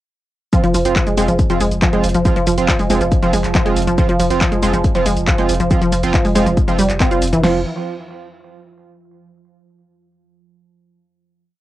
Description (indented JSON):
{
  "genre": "driving peak-time techno",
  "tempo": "139 BPM",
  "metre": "4/4",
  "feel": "straight",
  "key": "F minor",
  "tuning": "A4 = 438 Hz",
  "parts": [
    { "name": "resonant blip pluck", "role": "riff", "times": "0.5-7.6 s", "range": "E3 to F4", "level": "-17 LUFS", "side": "equal", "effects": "chorus, cassette tape, sidechain pumping, tape echo" },
    { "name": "sync-sweep polysynth", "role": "stabs", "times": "0.5-7.6 s", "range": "F3 to F4", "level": "-22 LUFS", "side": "right 6 dB", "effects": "chorus, sidechain pumping, tape echo" },
    { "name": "deep dark ambient pad", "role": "drone", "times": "1.7-7.5 s", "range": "F3", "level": "-27 LUFS", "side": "right 3 dB", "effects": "none" },
    { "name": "techno drum kit", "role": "drums", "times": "0.5-7.5 s", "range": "crash cymbal, kick drum, snare drum", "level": "-18 LUFS", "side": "left 1 dB", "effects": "cassette tape" },
    { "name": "techno drum kit", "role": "drums", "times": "0.5-7.4 s", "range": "handclaps, hi-hat, shaker", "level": "-23 LUFS", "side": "equal", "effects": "cassette tape" },
    { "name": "saturated sub bass", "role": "bass", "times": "0.6-7.6 s", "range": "F1", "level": "-23 LUFS", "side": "left 1 dB", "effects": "tube saturation, sidechain pumping, low-pass filter" }
  ],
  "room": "moderate small room reverb, RT60 0.6 s",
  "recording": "home recording on cassette",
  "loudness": "-13 LUFS",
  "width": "side -15 dB against mid",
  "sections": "0.5-7.4 drop; 7.4-9.2 final chord",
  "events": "drop 0.5-7.4",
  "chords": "0.5 F5"
}